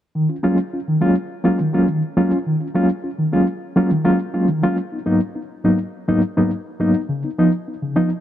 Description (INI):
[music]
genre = disco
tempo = 104 BPM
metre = 4/4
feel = straight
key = Eb minor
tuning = A4 = 439 Hz
[part]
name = reed electric piano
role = solo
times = 0.2-8.1 s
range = Ab2 to F4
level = -17 LUFS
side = equal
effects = fast tremolo
[sound]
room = light reverb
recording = none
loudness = -17 LUFS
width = side -11 dB against mid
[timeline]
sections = 0.2-8.2 A section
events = none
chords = 0.2 Ebm11; 4.8 Abm9; 7.1 Db7